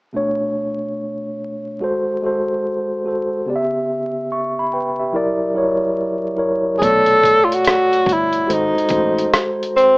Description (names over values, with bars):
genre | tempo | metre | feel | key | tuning
lo-fi hip hop | 72 BPM | 4/4 | swing 63% on 16ths | B minor | A4 = 440 Hz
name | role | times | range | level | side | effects
mellow tine electric piano | accompaniment | 0.1-10.0 s | B2 to C#6 | -19 LUFS | equal | medium stereo tremolo, cassette tape, low-pass filter
breathy tenor saxophone | melody | 6.8-10.0 s | B#3 to A4 | -13 LUFS | equal | low-pass filter
fingered electric bass | bass | 6.8-9.3 s | G1 to B1 | -28 LUFS | equal | none
dusty soul sampler-style drum kit | drums | 6.8-10.0 s | hi-hat, kick drum, rim click | -20 LUFS | equal | none
room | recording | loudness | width
light reverb | rough home demo mix, vinyl crackle, small speaker sound | -16 LUFS | side -28 dB against mid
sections
0.1-6.8 A section; 6.8-10.0 B section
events
none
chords
0.1 Bm9; 1.8 G#7b9; 3.5 C#m7b5; 5.2 F#7b13; 6.8 Bm9; 8.5 G#7b9